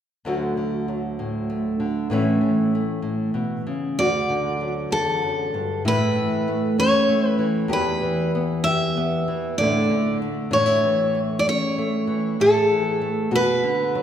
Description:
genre	acoustic folk duo or small band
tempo	64 BPM (dotted quarters)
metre	6/8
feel	straight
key	D major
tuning	A4 = 440 Hz
part	nylon-string guitar	accompaniment	0.2-14.0 s	D2 to G4	-22 LUFS	equal	none
part	picked steel-string acoustic guitar	melody	4.0-14.0 s	A4 to E5	-21 LUFS	equal	none
room	wet concert hall reverb, RT60 2.1 s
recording	recorded in a church or concert hall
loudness	-19 LUFS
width	side -9 dB against mid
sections	0.3-4.0 A section; 4.0-14.0 B section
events	none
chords	0.3 D; 2.1 Aadd9; 4.0 D; 5.8 Aadd9; 7.7 Em; 9.6 Asus4; 10.5 A; 13.3 Bm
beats	| 0.26 1.19 | 2.12 3.05 | 3.98 4.92 | 5.85 6.78 | 7.72 8.65 | 9.59 10.52 | 11.46 12.39 | 13.33

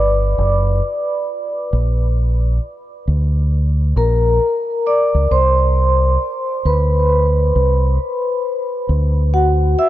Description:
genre	hip hop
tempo	67 BPM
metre	4/4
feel	swing 64% on 16ths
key	unclear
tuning	A4 = 440 Hz
part	vibraphone with medium mallets	accompaniment	0.0-9.9 s	F#4 to E6	-18 LUFS	equal	low-pass filter
part	deep dub fingered electric bass	bass	0.0-9.7 s	F#1 to D2	-15 LUFS	equal	none
room	moderate huge ambient reverb, RT60 8.8 s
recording	dreamy mix soaked in reverb, cassette tape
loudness	-14 LUFS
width	side -14 dB against mid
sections	0.0-9.9 A section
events	vibraphone solo 0.0-9.9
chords	0.0 Em7 (rootless); 1.7 Bb; 5.3 Csus2; 8.9 D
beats	0.82 | 1.72 2.62 3.51 4.41 | 5.30 6.20 7.09 7.99 | 8.88 9.78

